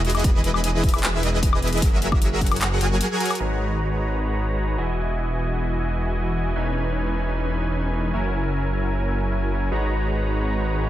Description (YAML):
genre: future bass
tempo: 152 BPM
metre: 4/4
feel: half-time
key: G# minor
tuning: A4 = 441 Hz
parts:
  - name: supersaw chords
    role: riff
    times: 0.0-10.9 s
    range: E3 to A#5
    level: -25 LUFS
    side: equal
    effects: sidechain pumping, low-pass filter, ping-pong delay
  - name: wide detuned saw bass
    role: bass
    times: 0.0-10.9 s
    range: E1 to G#1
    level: -24 LUFS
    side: equal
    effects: chorus, sidechain pumping
  - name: pop drum kit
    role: drums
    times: 0.0-3.4 s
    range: handclaps, hi-hat, woodblock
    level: -26 LUFS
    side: left 4 dB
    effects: none
  - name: electronic kick drum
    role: drums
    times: 0.2-2.5 s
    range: none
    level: -21 LUFS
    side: equal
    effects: none
room: digital ambience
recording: none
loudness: -20 LUFS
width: side -13 dB against mid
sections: 0.0-3.4 A section; 3.4-10.9 B section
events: drop 0.0-3.4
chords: 0.2 Emaj7; 1.8 F#9; 3.4 G#m11; 4.8 Emaj9; 6.6 C#m9/E; 8.1 F#9; 9.7 G#m11